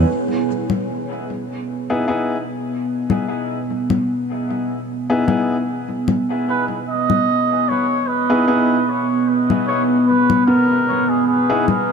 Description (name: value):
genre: ambient dub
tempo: 75 BPM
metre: 4/4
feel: swing 55% on 16ths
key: C# minor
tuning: A4 = 440 Hz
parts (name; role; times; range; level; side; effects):
- deep dark ambient pad; sustained chords; 0.0-11.9 s; B3 to G#5; -20 LUFS; equal; chorus, built-in reverb
- congas; drums; 0.7-11.9 s; none; -23 LUFS; left 5 dB; overdrive, dub echo
- clear upright piano; stabs; 1.9-11.6 s; B3 to G#4; -24 LUFS; left 2 dB; dub echo
- trumpet with cup mute; melody; 6.5-11.9 s; G#4 to D#5; -19 LUFS; right 2 dB; dub echo
- felt-muted upright piano; arpeggios; 10.5-11.9 s; B3; -22 LUFS; right 3 dB; vintage 12-bit sampler grit, dub echo
room: wet huge ambient reverb, RT60 6.0 s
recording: none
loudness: -16 LUFS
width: side -6 dB against mid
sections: 0.1-11.9 A section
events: filter sweep on ambient pad 0.1-11.9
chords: 0.1 C#m7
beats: | 0.08 0.88 1.68 2.48 | 3.28 4.08 4.88 5.68 | 6.48 7.28 8.08 8.88 | 9.68 10.48 11.28